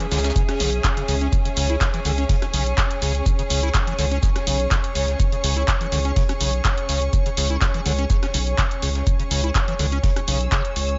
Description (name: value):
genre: acid house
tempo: 124 BPM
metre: 4/4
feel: straight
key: C# minor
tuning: A4 = 439 Hz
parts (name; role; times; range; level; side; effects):
- warm analog pad; sustained chords; 0.0-11.0 s; G#4 to C#5; -32 LUFS; equal; chorus, sidechain pumping
- liquid acid bass; riff; 0.0-10.6 s; C#3 to E4; -31 LUFS; equal; overdrive, analog chorus, sidechain pumping, analog delay
- punchy analog drum machine; drums; 0.0-11.0 s; handclaps, hi-hat, rim click; -28 LUFS; equal; none
- clear studio string section; texture; 0.0-11.0 s; C#4 to E6; -33 LUFS; equal; sidechain pumping
- round analog bass; bass; 0.1-11.0 s; B1 to C#2; -25 LUFS; equal; sidechain pumping
- dusty soul sampler-style drum kit; drums; 0.1-10.9 s; hi-hat, shaker, snare drum; -36 LUFS; equal; none
- electronic kick drum; drums; 0.4-10.6 s; none; -24 LUFS; equal; none
room: digital ambience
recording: dry, gritty hardware recording, nothing above 7.7 kHz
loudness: -21 LUFS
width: mono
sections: 0.0-11.0 A section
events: none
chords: 0.0 C#5